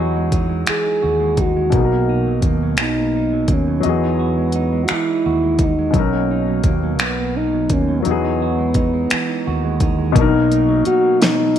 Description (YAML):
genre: slow six-eight R&B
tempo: 57 BPM (dotted quarters)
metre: 6/8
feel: straight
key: B major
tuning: A4 = 440 Hz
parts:
  - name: clean electric guitar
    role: second line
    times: 0.0-11.6 s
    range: B2 to F#4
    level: -24 LUFS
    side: right 11 dB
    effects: none
  - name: warm baby grand piano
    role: accompaniment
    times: 0.0-11.6 s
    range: B2 to D#5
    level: -24 LUFS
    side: left 10 dB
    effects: none
  - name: fretless electric bass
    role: bass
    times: 0.0-10.9 s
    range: B1 to E2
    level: -21 LUFS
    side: equal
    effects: lush chorus
  - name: smooth R&B drum kit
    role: drums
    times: 0.3-11.6 s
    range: finger snaps, hi-hat, kick drum, snare drum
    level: -19 LUFS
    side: equal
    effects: none
  - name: dark French horn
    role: melody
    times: 0.7-11.6 s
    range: A#3 to G#4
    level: -19 LUFS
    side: equal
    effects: slapback echo
room: moderate echo chamber reverb, RT60 1.8 s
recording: 1960s-style stereo with parts hard left and right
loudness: -15 LUFS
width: side -10 dB against mid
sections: 0.0-10.1 A section; 10.1-11.6 B section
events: none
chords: 0.0 Emaj9; 1.7 Bmaj7; 3.8 Emaj9; 5.9 Bmaj7; 8.0 Emaj9; 10.1 Bmaj7